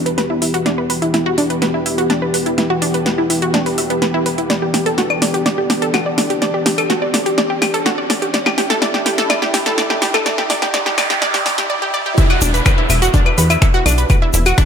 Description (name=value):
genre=melodic techno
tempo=125 BPM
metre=4/4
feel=straight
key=E minor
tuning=A4 = 441 Hz
part: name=dark analog pad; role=sustained chords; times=0.0-14.7 s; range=E3 to G4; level=-22 LUFS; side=equal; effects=chorus, sidechain pumping
part: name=wide unison pluck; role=arpeggios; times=0.0-14.7 s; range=B3 to B5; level=-18 LUFS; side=equal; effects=sidechain pumping, tape echo
part: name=riser, noise sweep and downlifter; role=sound effects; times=1.2-14.7 s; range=none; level=-26 LUFS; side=right 2 dB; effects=none
part: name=deep house drum kit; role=drums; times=0.1-14.7 s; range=claves, finger snaps, hi-hat, snare drum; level=-19 LUFS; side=left 1 dB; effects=overdrive
part: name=electronic kick drum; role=drums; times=12.2-14.7 s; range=none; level=-13 LUFS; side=equal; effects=none
part: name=egg shaker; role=percussion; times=12.2-14.7 s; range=none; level=-24 LUFS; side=left 3 dB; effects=none
part: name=plucky analog bass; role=bass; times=12.4-14.5 s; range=E1 to E2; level=-15 LUFS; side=equal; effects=sidechain pumping
room=moderate lush hall reverb, RT60 1.9 s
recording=high-pass filter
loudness=-14 LUFS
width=side -7 dB against mid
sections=0.0-12.2 A section; 12.2-14.7 B section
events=build-up 0.0-12.2; drum fill 0.0-11.7; filter sweep on synth arpeggio sound 0.0-12.2; filter sweep 0.0-12.2; noise sweep 10.3-12.2; break 11.7-12.2; drop 12.2-14.7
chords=0.0 Em; 4.5 G/E; 12.2 Em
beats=0.18 | 0.66 1.14 1.62 2.10 | 2.58 3.06 3.54 4.02 | 4.50 4.98 5.46 5.94 | 6.42 6.90 7.38 7.86 | 8.34 8.82 9.30 9.78 | 10.26 10.74 11.22 11.70 | 12.18 12.66 13.14 13.62 | 14.10 14.58